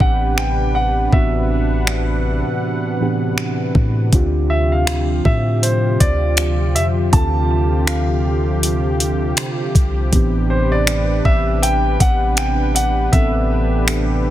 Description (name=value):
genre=contemporary R&B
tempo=80 BPM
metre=4/4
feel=swing 58% on 16ths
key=D minor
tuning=A4 = 442 Hz
part: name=warm grand piano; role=melody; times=0.0-14.3 s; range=C5 to A5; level=-22 LUFS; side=equal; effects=tape echo
part: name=muted felt-like synth keys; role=accompaniment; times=0.0-14.3 s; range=A2 to A4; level=-22 LUFS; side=right 2 dB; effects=chorus
part: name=warm analog pad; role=sustained chords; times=0.0-14.3 s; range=C3 to F#5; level=-24 LUFS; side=equal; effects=chorus
part: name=warm 808-style bass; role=bass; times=0.0-14.3 s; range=A1 to A2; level=-19 LUFS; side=equal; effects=none
part: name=smooth R&B drum kit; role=drums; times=0.0-14.1 s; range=finger snaps, hi-hat, kick drum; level=-17 LUFS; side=equal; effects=soft clipping on snare
room=digital ambience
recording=dense, heavily limited modern master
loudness=-15 LUFS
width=side -13 dB against mid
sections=0.0-14.3 A section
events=break 0.0-4.1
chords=0.0 Am11; 4.1 Dm7; 10.1 Am11